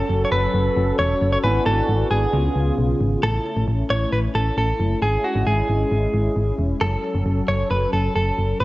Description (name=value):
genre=synth-pop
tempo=134 BPM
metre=4/4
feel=straight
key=F# minor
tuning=A4 = 442 Hz
part: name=direct-recorded clean electric guitar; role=melody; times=0.0-8.6 s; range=F#4 to C#5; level=-23 LUFS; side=equal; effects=none
part: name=tine electric piano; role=accompaniment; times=0.0-3.2 s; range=B3 to G#5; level=-26 LUFS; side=equal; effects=medium stereo tremolo
part: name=warm analog pad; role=sustained chords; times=0.0-8.6 s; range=C#3 to A4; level=-27 LUFS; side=left 1 dB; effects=chorus
part: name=solid FM bass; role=bass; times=0.0-8.6 s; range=E1 to C#2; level=-21 LUFS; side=equal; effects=none
room=moderate concert hall reverb, RT60 2.3 s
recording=worn, warbling old tape, cassette tape, warbly pitch drift, nothing above 7.9 kHz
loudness=-18 LUFS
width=side -18 dB against mid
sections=0.0-3.2 A section; 3.2-8.6 B section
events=none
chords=0.0 F#m; 1.4 E7/G#; 2.3 C#; 3.2 A; 5.0 C#m/G#; 6.8 F#m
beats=0.10 0.54 0.99 | 1.44 1.89 2.33 2.78 | 3.23 3.68 4.12 4.57 | 5.02 5.47 5.92 6.36 | 6.81 7.26 7.71 8.15 | 8.60